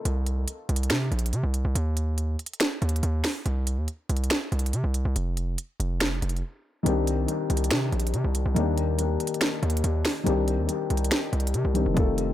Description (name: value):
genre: hip hop, trap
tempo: 141 BPM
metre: 4/4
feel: half-time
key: C dorian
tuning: A4 = 440 Hz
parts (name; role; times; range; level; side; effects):
- felt-muted upright piano; accompaniment; 0.0-0.1, 6.8-12.3 s; Eb3 to A4; -27 LUFS; left 4 dB; low-pass filter, dub echo
- hard-hitting 808-style bass; bass; 0.1-12.3 s; F1 to C3; -25 LUFS; right 1 dB; none
- trap drum kit; drums; 0.1-12.3 s; finger snaps, hi-hat, kick drum, snare drum; -27 LUFS; right 1 dB; none
room: digital ambience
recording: echo-heavy mix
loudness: -24 LUFS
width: side -13 dB against mid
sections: 0.1-12.3 A section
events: break 0.1-6.9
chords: 0.1 Bbsus2; 1.8 N.C.; 6.9 Cmadd9; 8.6 Ebmaj7; 10.3 Cmadd9